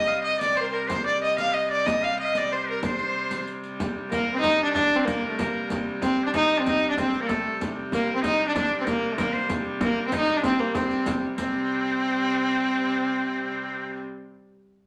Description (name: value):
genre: medieval dance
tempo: 189 BPM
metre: 3/4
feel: straight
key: C dorian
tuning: A4 = 440 Hz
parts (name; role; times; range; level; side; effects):
- warm fiddle; melody; 0.0-14.0 s; A3 to F5; -27 LUFS; equal; none
- edgy shawm; second line; 0.0-14.0 s; C4 to F5; -32 LUFS; equal; none
- clear hurdy-gurdy; drone; 0.0-14.0 s; C3 to G3; -36 LUFS; equal; none
- frame drum; percussion; 0.4-11.5 s; none; -34 LUFS; equal; none
- riq; percussion; 0.4-11.5 s; none; -39 LUFS; equal; none
room: wet large studio reverb, RT60 0.9 s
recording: none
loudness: -25 LUFS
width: mono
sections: 0.0-3.8 A section; 3.8-11.4 B section; 11.4-13.2 C section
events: speeding up 0.0-13.2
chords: none